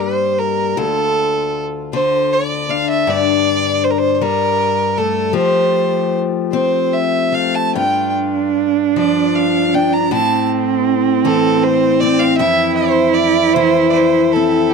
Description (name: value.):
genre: celtic folk, Celtic slow air.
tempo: 52 BPM (dotted quarters).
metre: 6/8.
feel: rubato.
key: G dorian.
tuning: A4 = 440 Hz.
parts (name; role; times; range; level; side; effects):
clear fiddle; melody; 0.0-14.7 s; G4 to Bb5; -17 LUFS; right 2 dB; none.
picked steel-string acoustic guitar; accompaniment; 0.0-14.7 s; D2 to G4; -18 LUFS; left 12 dB; none.
warm cello; second line; 7.7-14.7 s; C4 to E4; -16 LUFS; right 14 dB; none.
room: small room ambience.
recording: dry, close 1970s-style studio recording.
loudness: -13 LUFS.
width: side -5 dB against mid.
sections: 0.0-14.7 A section.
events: none.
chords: 0.0 G5; 0.8 Dm; 3.1 Gmadd9; 5.3 Fadd9; 7.7 G5; 10.1 Am; 12.4 F5.